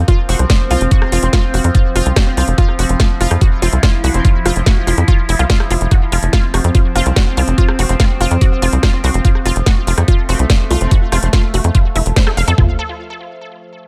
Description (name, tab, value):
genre	psychedelic trance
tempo	144 BPM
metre	4/4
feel	straight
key	F major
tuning	A4 = 440 Hz
part	overtone-sweeping drone	sustained chords	0.0-12.6 s	F3 to E4	-25 LUFS	equal	chorus, built-in reverb, phaser, sidechain pumping
part	tight sequencer bass	bass	0.0-12.8 s	F1 to F2	-16 LUFS	equal	tube saturation
part	unison pluck	riff	0.1-12.8 s	E4 to F5	-24 LUFS	equal	sidechain pumping, digital delay
part	drum and bass drum kit	drums	0.1-12.7 s	kick drum, toms	-14 LUFS	equal	none
part	drum and bass drum kit	drums	0.1-12.6 s	hi-hat, rim click, snare drum	-23 LUFS	equal	none
part	metallic wobble bass	second line	0.3-11.3 s	C4	-31 LUFS	equal	analog chorus, sidechain pumping, high-pass filter, dub echo
room	little or no reverb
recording	none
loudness	-14 LUFS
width	mono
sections	0.0-12.6 A section; 12.6-13.9 B section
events	drop 0.0-12.6; band accent 12.2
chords	0.0 F5; 12.6 N.C.